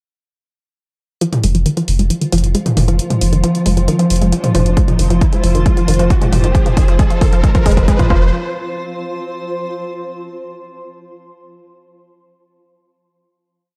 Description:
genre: driving peak-time techno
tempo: 135 BPM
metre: 4/4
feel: straight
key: F minor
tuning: A4 = 439 Hz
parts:
  - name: resonant blip pluck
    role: riff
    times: 1.2-8.3 s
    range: Eb3 to Ab3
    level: -21 LUFS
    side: equal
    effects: chorus, overdrive, sidechain pumping, digital delay
  - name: swarming drone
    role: drone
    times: 2.5-8.4 s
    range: F3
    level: -27 LUFS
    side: equal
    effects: built-in reverb, sidechain pumping
  - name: punchy analog drum machine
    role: drums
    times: 1.2-8.1 s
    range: hi-hat, toms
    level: -23 LUFS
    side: equal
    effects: sidechain pumping on hats, sidechain pumping on toms
  - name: riser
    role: sound effects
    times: 3.2-8.3 s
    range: none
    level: -30 LUFS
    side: equal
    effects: none
  - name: granular cloud pad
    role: texture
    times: 2.0-10.1 s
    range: F4 to C6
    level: -27 LUFS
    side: equal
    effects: built-in reverb, sidechain pumping
  - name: saturated sub bass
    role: bass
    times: 1.4-8.3 s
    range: F1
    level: -18 LUFS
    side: equal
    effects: sidechain pumping, low-pass filter
  - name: electronic kick drum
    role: drums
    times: 4.8-8.2 s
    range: none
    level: -15 LUFS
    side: equal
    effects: overdrive
room: light reverb, digital ambience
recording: dark, warm production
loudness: -15 LUFS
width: mono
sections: 1.2-8.3 build; 8.3-10.1 final note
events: build-up 1.2-8.3; filter sweep on synth arpeggio sound 1.2-8.3; riser 3.2-8.3; drum fill 4.8-8.3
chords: 1.2 F5

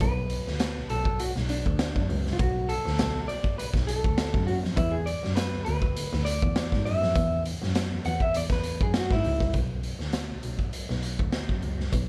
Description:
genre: funk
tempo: 101 BPM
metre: 4/4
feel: straight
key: unclear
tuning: A4 = 439 Hz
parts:
  - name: electric guitar at the edge of break-up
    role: accompaniment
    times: 0.0-9.5 s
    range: D4 to F#5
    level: -33 LUFS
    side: equal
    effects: none
  - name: rich double bass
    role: bass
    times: 0.0-12.1 s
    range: B1 to G#2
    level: -31 LUFS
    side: equal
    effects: none
  - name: raw garage drum kit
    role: drums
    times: 0.0-12.1 s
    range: hi-hat, kick drum, snare drum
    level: -31 LUFS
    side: equal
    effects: none
room: light reverb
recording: dark, warm production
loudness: -27 LUFS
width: mono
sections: 0.0-9.5 A section; 9.5-12.1 B section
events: clean electric guitar solo 0.0-9.5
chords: 0.0 Bm7; 4.8 E7sus2; 9.5 N.C.

